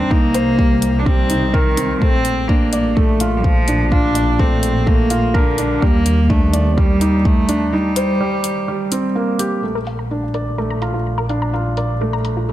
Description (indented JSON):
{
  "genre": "piano and strings electronica",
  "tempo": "126 BPM",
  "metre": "4/4",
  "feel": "straight",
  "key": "Bb major",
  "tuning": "A4 = 440 Hz",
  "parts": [
    { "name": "rich cello", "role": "melody", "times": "0.0-9.2 s", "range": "D3 to D4", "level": "-19 LUFS", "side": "equal", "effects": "ping-pong delay" },
    { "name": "felt-muted upright piano", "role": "riff", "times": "0.0-12.5 s", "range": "G3 to D5", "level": "-20 LUFS", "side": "right 1 dB", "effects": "ping-pong delay" },
    { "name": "dark studio double bass section", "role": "bass", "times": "0.0-12.5 s", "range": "Bb1 to Eb2", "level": "-20 LUFS", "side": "equal", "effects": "tube saturation, sidechain pumping" },
    { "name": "electronic kick drum", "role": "drums", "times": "0.1-7.3 s", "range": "none", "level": "-16 LUFS", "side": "equal", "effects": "none" },
    { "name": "electronic hi-hat", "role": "drums", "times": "0.3-12.3 s", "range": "none", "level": "-25 LUFS", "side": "left 3 dB", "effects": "low-pass filter on hats" },
    { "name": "wide unison pluck", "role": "arpeggios", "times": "9.8-12.4 s", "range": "F4 to Bb5", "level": "-27 LUFS", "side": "left 2 dB", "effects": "sidechain pumping, ping-pong delay" }
  ],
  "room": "light reverb, small room reverb",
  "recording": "none",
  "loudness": "-14 LUFS",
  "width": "side -13 dB against mid",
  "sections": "0.0-9.6 A section; 9.6-12.5 B section",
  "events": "break 7.7-9.6; filter sweep on synth arpeggio sound 9.6-12.5",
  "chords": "0.1 Cm7; 2.0 Bbmaj7; 5.8 Ebmaj7; 7.7 Cm7; 9.6 Bbmaj7"
}